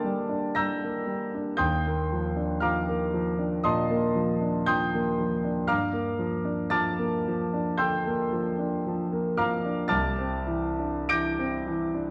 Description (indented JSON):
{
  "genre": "classical, impressionist solo piano",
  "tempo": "47-60 BPM",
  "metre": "4/4",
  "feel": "rubato",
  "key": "G minor",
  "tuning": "A4 = 442 Hz",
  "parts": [
    { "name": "clear concert grand piano", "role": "solo", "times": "0.0-12.1 s", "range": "C2 to D7", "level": "-27 LUFS", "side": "equal", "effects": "none" }
  ],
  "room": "wet recital hall reverb, RT60 1.6 s",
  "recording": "dark, warm production",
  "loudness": "-27 LUFS",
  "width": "mono",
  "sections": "0.0-12.1 A section",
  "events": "none",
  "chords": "0.0 Gmadd9; 1.6 Ebmaj9; 5.7 Gm7; 9.9 C69",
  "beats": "0.56 | 1.61 2.63 3.65 4.68 | 5.69 6.73 7.81 8.86 | 9.90 11.10"
}